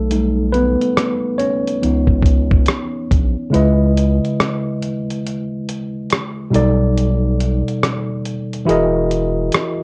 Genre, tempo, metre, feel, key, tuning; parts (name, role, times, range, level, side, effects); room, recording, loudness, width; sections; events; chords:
lo-fi hip hop; 70 BPM; 4/4; swing 63% on 16ths; A4 = 441 Hz
mellow tine electric piano; accompaniment; 0.0-9.8 s; B2 to D#5; -20 LUFS; equal; low-pass filter
saturated sub bass; bass; 0.0-9.5 s; E1 to C#2; -21 LUFS; equal
dusty soul sampler-style drum kit; drums; 0.1-9.8 s; hi-hat, kick drum, rim click; -20 LUFS; equal
moderate small room ambience, RT60 0.5 s; worn, warbling old tape, cassette tape, warbly pitch drift; -17 LUFS; mono
0.0-3.5 A section; 3.5-9.8 A section
tine electric piano solo 0.0-3.5; kick muted 3.5-9.8
0.0 Baug7; 1.8 C#m9; 3.5 C#m7; 6.5 B7alt; 8.7 Emaj9#11